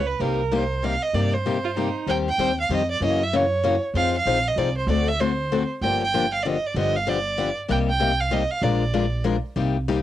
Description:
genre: acoustic string swing (jazz manouche)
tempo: 193 BPM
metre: 3/4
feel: swing 61% on 8ths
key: Eb major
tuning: A4 = 440 Hz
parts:
  - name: warm violin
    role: melody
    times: 0.0-9.2 s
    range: C5 to G5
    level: -24 LUFS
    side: right 3 dB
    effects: cassette tape
  - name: warm violin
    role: second line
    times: 0.0-2.1 s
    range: Eb4 to Cb5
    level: -28 LUFS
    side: right 7 dB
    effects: cassette tape
  - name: upright bass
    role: bass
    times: 0.0-10.0 s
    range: G1 to G2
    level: -27 LUFS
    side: right 1 dB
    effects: none
  - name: picked steel-string acoustic guitar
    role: accompaniment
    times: 0.2-10.0 s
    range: C3 to C5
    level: -24 LUFS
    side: left 6 dB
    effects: cassette tape
room: light reverb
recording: home recording on cassette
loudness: -20 LUFS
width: side -12 dB against mid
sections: 0.0-2.1 A section; 2.1-9.6 B section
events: none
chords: 0.2 Cm7; 2.1 Eb6; 3.0 Gb7; 3.9 Fm7; 4.9 D7; 5.8 Gm7; 6.8 G7; 7.7 Cm7; 8.6 Bb7

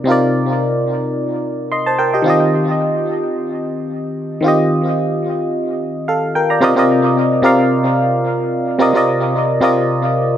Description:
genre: amapiano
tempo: 110 BPM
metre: 4/4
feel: swing 55% on 16ths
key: C minor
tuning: A4 = 440 Hz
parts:
  - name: barking FM electric piano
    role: solo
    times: 0.0-10.4 s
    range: C3 to C6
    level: -14 LUFS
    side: equal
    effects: chorus, tape echo
room: moderate spring reverb, RT60 1.1 s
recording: echo-heavy mix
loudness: -14 LUFS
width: side -10 dB against mid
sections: 0.0-6.6 A section; 6.6-10.4 B section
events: drop 6.6-10.4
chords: 0.0 Cm11; 2.3 Eb69; 6.6 Cm11

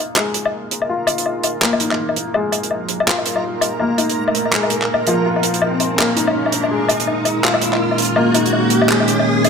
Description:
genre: half-time drum and bass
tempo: 165 BPM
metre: 4/4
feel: swing 60% on 16ths, half-time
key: unclear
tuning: A4 = 440 Hz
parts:
  - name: deep dark ambient pad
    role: sustained chords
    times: 0.8-9.5 s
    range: Bb3 to Ab4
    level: -23 LUFS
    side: equal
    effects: chorus, built-in reverb
  - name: felt-muted upright piano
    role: arpeggios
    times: 0.0-9.5 s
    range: F3 to F4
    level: -20 LUFS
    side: left 2 dB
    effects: low-pass filter, tape echo
  - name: riser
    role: sound effects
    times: 1.1-9.5 s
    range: none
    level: -23 LUFS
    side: right 2 dB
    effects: none
  - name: backwards swelling texture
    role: texture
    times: 0.8-9.5 s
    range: Bb4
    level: -27 LUFS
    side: right 4 dB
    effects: built-in reverb
  - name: deep reggae drum kit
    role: drums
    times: 0.2-9.5 s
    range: handclaps, hi-hat, woodblock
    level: -18 LUFS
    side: left 1 dB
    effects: none
room: moderate echo chamber reverb, RT60 1.7 s, small room ambience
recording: none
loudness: -15 LUFS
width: side -6 dB against mid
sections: 0.0-9.5 A section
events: build-up 0.0-9.5; filter sweep on ambient pad 0.0-9.5; filter sweep on felt piano 0.0-9.5; riser 1.1-9.5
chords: 0.0 Bbm

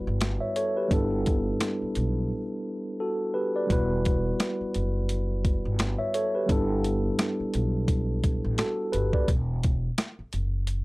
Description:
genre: hip hop, boom-bap hip-hop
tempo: 86 BPM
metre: 4/4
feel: swing 57% on 16ths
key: E minor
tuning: A4 = 440 Hz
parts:
  - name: mellow tine electric piano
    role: accompaniment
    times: 0.0-9.3 s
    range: G3 to E5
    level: -27 LUFS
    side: equal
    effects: medium stereo tremolo, cassette tape, high-pass filter, low-pass filter
  - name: upright bass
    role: bass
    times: 0.0-10.8 s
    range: E1 to B1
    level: -29 LUFS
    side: equal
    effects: none
  - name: boom bap sampler-style drum kit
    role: drums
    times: 0.2-10.8 s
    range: hi-hat, kick drum, rim click, snare drum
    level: -26 LUFS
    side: equal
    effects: none
room: light reverb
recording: dry, gritty hardware recording, transformer saturation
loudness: -24 LUFS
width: side -22 dB against mid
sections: 0.0-10.8 A section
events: break 2.3-3.7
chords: 0.0 Emadd9; 0.9 G6; 3.7 Emadd9; 6.5 G6; 9.3 Esus2

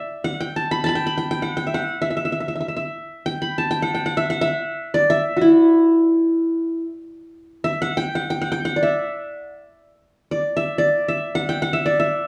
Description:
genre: Turkish makam ensemble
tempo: free time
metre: none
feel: none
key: E makam huseyni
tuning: A4 = 440 Hz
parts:
  - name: qanun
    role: solo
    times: 0.0-12.3 s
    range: E4 to B5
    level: -21 LUFS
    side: equal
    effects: none
room: wet studio reverb, RT60 0.7 s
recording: band playing live in one room, small room reverb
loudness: -21 LUFS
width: mono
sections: 0.0-7.3 A section; 7.3-12.3 A section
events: none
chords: none

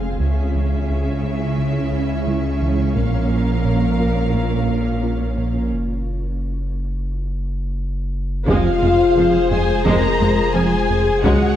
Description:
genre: cinematic, hybrid orchestral and electronic film score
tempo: 87 BPM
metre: 4/4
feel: straight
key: F phrygian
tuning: A4 = 440 Hz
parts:
  - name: rich symphonic violin section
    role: melody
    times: 0.0-11.6 s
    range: C5 to F5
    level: -30 LUFS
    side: left 6 dB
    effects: none
  - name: dark symphonic violin section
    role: second line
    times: 0.0-11.6 s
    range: Ab4 to Bb5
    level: -27 LUFS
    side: left 1 dB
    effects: none
  - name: rich symphonic viola section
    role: accompaniment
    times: 0.0-11.6 s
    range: F3 to Ab4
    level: -26 LUFS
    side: equal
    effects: none
  - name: soft additive organ-like pad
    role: sustained chords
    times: 0.0-11.6 s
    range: Ab3 to F5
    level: -26 LUFS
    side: right 1 dB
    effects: ensemble chorus, built-in reverb
  - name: tight sequenced synth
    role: arpeggios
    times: 0.0-11.4 s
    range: Db3 to Bb4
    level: -30 LUFS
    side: left 1 dB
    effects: none
  - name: round analog bass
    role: riff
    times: 0.0-11.4 s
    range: Db2 to Bb3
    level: -25 LUFS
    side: right 2 dB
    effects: none
  - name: rich symphonic cello section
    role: bass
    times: 0.0-11.3 s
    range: F2 to Db3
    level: -25 LUFS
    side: right 2 dB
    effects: none
  - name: rich symphonic double bass section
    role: bass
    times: 0.0-11.3 s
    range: F1 to Db2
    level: -27 LUFS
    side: right 3 dB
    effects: none
  - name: saturated sub bass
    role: bass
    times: 0.0-11.6 s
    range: F1 to Db2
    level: -23 LUFS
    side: equal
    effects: none
  - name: taiko ensemble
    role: drums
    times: 3.0-4.3, 8.5-11.6 s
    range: none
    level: -25 LUFS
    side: equal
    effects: none
  - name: dark trombone section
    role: sustained chords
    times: 8.5-11.5 s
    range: C3 to Ab3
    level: -29 LUFS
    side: right 4 dB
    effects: none
  - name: mellow French horn section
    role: sustained chords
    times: 8.5-11.6 s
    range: F4 to Bb4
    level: -19 LUFS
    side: left 4 dB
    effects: none
room: moderate scoring stage reverb, RT60 1.8 s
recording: dark, warm production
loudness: -17 LUFS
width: side -11 dB against mid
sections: 0.0-8.5 A section; 8.5-11.6 B section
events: break 5.7-8.5; drum fill 7.4-8.5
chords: 0.2 Dbm; 3.0 Bbm; 5.7 N.C.; 8.5 Fm

